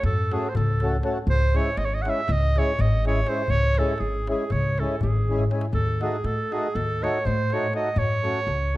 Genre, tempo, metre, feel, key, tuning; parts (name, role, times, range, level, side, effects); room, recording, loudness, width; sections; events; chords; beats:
balkan folk, Balkan wedding band; 242 BPM (eighths); 9/8; straight; C# harmonic minor; A4 = 440 Hz
clear clarinet; melody; 0.0-8.8 s; G#4 to F#5; -27 LUFS; right 2 dB
upright bass; bass; 0.0-8.8 s; G#1 to A2; -26 LUFS; equal
darbuka; percussion; 0.0-8.6 s; -27 LUFS; left 2 dB
mellow accordion; accompaniment; 0.3-8.4 s; G#3 to A4; -29 LUFS; left 1 dB
moderate recital hall reverb, RT60 1.2 s; dark, warm production; -21 LUFS; side -17 dB against mid
0.0-8.8 A section
drum fill 5.2-5.7
0.0 F#m; 1.3 C#m; 5.7 D#dim; 8.0 F#m
0.01 0.26 0.51 0.76 1.01 | 1.26 1.51 1.76 2.00 2.25 2.50 2.75 3.00 3.25 | 3.50 3.75 3.99 4.24 4.49 4.74 4.99 5.24 5.48 | 5.73 5.98 6.23 6.48 6.72 6.97 7.22 7.47 7.71 | 7.96 8.21 8.46 8.71